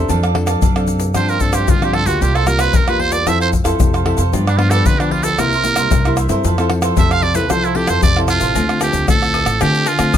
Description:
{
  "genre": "samba and choro",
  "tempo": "114 BPM",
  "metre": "4/4",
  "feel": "straight",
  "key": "F major",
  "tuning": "A4 = 440 Hz",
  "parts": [
    { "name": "cavaquinho", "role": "accompaniment", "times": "0.0-8.5 s", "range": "D4 to F5", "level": "-23 LUFS", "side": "right 5 dB", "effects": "none" },
    { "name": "nylon-string guitar", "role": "accompaniment", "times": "0.0-10.2 s", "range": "G2 to A4", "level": "-21 LUFS", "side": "left 3 dB", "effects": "none" },
    { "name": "upright bass", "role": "bass", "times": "0.0-10.2 s", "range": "A1 to D3", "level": "-19 LUFS", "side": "right 1 dB", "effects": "none" },
    { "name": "tube shaker, surdo, pandeiro, tamborim and agogo bells", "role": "percussion", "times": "0.1-10.2 s", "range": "none", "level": "-18 LUFS", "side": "left 2 dB", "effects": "none" },
    { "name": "trumpet with metal mute", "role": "melody", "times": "1.2-10.2 s", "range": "D4 to F5", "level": "-18 LUFS", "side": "right 4 dB", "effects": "none" }
  ],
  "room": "little or no reverb",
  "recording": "close, detailed microphones",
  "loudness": "-13 LUFS",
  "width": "side -10 dB against mid",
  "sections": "0.0-8.6 A section; 8.6-10.2 B section",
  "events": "muted trumpet solo 0.0-8.6",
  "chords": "0.1 F6; 1.2 G7sus4; 2.2 C7sus4; 3.3 Fmaj7; 4.3 G7; 5.4 C7; 6.4 Fmaj7; 8.6 Dm7"
}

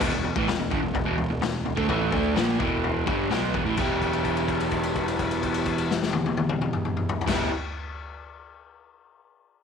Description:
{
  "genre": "garage rock duo or trio",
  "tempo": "127 BPM",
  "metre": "4/4",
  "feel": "straight",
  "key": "E minor",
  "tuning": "A4 = 440 Hz",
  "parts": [
    { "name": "crunchy overdriven guitar", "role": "riff", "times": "0.0-7.5 s", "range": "E2 to G4", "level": "-26 LUFS", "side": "right 1 dB", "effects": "none" },
    { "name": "fuzz picked electric bass", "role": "bass", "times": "0.0-7.5 s", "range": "E1 to D2", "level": "-32 LUFS", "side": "right 1 dB", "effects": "overdrive" },
    { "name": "raw garage drum kit", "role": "drums", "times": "0.0-7.4 s", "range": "crash cymbal, kick drum, snare drum, toms", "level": "-28 LUFS", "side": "left 4 dB", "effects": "none" }
  ],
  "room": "light reverb",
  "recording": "1960s-style stereo",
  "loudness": "-23 LUFS",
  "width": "side -6 dB against mid",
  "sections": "0.0-3.8 A section; 3.8-7.6 B section",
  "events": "held note 3.8-7.3",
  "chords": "0.0 Em"
}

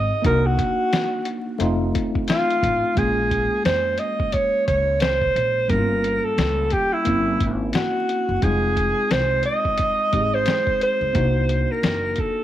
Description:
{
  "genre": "hip hop, jazz-hop",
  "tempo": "88 BPM",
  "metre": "4/4",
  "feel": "swing 60% on 16ths",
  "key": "Bb minor",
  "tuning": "A4 = 440 Hz",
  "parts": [
    { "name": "breathy alto saxophone", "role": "melody", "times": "0.0-12.4 s", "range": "E4 to Eb5", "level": "-21 LUFS", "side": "right 1 dB", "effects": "none" },
    { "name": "mellow tine electric piano", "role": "accompaniment", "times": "0.0-12.4 s", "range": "G3 to Ab4", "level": "-26 LUFS", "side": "equal", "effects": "fast stereo tremolo" },
    { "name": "upright bass", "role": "bass", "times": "0.0-12.1 s", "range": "F1 to F2", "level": "-25 LUFS", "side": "equal", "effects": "transformer saturation" },
    { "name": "lo-fi sampler-style drum kit", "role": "drums", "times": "0.2-12.4 s", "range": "hi-hat, kick drum, snare drum", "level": "-25 LUFS", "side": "left 2 dB", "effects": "none" }
  ],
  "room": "moderate spring reverb, RT60 2.2 s",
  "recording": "1960s-style stereo, vinyl crackle",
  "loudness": "-18 LUFS",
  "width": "side -12 dB against mid",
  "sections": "0.0-3.0 A section; 3.0-12.4 B section",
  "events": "alto saxophone solo 0.0-3.0",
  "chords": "0.2 Cm7b5; 1.6 F7; 3.0 Bbm9; 5.7 Gm7b5; 7.1 Gb7#11; 8.4 Fm7; 11.2 Cm7b5"
}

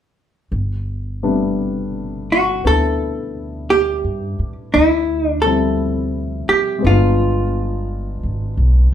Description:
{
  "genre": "jazz ballad",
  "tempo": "57 BPM",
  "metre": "4/4",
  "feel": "swing 66% on 8ths",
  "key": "G major",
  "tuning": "A4 = 441 Hz",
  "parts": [
    { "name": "upright bass", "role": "bass", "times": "0.5-8.9 s", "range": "G1 to A2", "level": "-20 LUFS", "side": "equal", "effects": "none" },
    { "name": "warm baby grand piano", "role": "accompaniment", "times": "1.2-8.9 s", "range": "F3 to F4", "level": "-22 LUFS", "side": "left 3 dB", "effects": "none" },
    { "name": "hollow-body jazz guitar", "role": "melody", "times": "2.3-8.5 s", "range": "E4 to A4", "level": "-17 LUFS", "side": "equal", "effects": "none" }
  ],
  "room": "moderate studio reverb, RT60 0.7 s",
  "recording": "band playing live in one room",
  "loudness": "-16 LUFS",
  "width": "side -10 dB against mid",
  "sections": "0.5-8.9 A section",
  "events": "none",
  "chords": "0.5 Gadd9; 4.7 Dm11; 6.8 G7b9"
}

